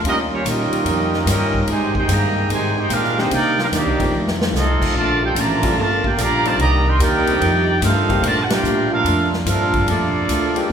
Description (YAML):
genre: jazz, big band swing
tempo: 146 BPM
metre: 4/4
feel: swing 66% on 8ths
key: Bb major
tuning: A4 = 439 Hz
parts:
  - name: picked steel-string acoustic guitar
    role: accompaniment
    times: 0.0-10.7 s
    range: F2 to F4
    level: -27 LUFS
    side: left 3 dB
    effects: none
  - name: warm trombone section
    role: sustained chords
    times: 0.0-10.7 s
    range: C3 to D5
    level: -28 LUFS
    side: left 1 dB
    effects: none
  - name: upright bass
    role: bass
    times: 0.0-10.7 s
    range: G1 to C3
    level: -22 LUFS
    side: equal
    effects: none
  - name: swinging big-band drum kit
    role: drums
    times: 0.0-10.7 s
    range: crash cymbal, hi-hat, kick drum, ride cymbal, snare drum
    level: -25 LUFS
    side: left 1 dB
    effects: none
  - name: clear trumpet section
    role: melody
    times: 0.1-10.7 s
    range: Bb3 to C6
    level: -20 LUFS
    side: right 2 dB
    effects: none
  - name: clear trombone section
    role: second line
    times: 0.1-10.7 s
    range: C3 to A4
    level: -24 LUFS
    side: right 3 dB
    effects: none
  - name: bright upright piano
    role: accompaniment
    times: 3.2-10.7 s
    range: Eb3 to C5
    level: -27 LUFS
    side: left 3 dB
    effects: none
room: wet recital hall reverb, RT60 1.4 s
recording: recorded in a church or concert hall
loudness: -15 LUFS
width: side -8 dB against mid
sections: 0.0-10.7 A section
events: drum fill 4.1-4.5; band accent 8.4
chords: 0.0 Eb9; 1.7 Abmaj7; 3.3 Cm9; 4.1 F7; 5.0 Bbmaj7; 5.8 Gm7; 6.6 Cm9; 7.4 F13; 8.2 Bbmaj7